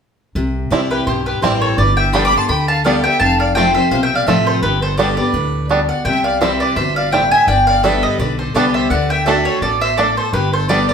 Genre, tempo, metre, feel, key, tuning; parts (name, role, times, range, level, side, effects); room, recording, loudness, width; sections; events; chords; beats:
bluegrass; 168 BPM; 4/4; swing 54% on 8ths; C major; A4 = 440 Hz
picked steel-string acoustic guitar; accompaniment; 0.4-10.9 s; F2 to G4; -20 LUFS; left 1 dB
upright bass; bass; 0.4-10.9 s; F1 to D2; -21 LUFS; equal
bluegrass banjo; arpeggios; 0.7-10.8 s; G3 to F4; -19 LUFS; right 3 dB
mandolin; melody; 0.9-10.9 s; B4 to D6; -17 LUFS; right 1 dB
clear fiddle; second line; 0.9-10.9 s; G4 to B5; -23 LUFS; left 4 dB
wet large studio reverb, RT60 1.0 s; band playing live in one room; -13 LUFS; side -6 dB against mid
0.4-10.9 A section
0.4 C; 1.8 G; 3.2 F; 4.6 G; 6.1 C; 7.5 G; 8.9 D; 10.3 G
| 0.36 0.71 1.07 1.43 | 1.78 2.14 2.49 2.85 | 3.21 3.56 3.92 4.28 | 4.63 4.99 5.34 5.70 | 6.06 6.41 6.77 7.13 | 7.48 7.84 8.20 8.55 | 8.91 9.27 9.62 9.98 | 10.33 10.69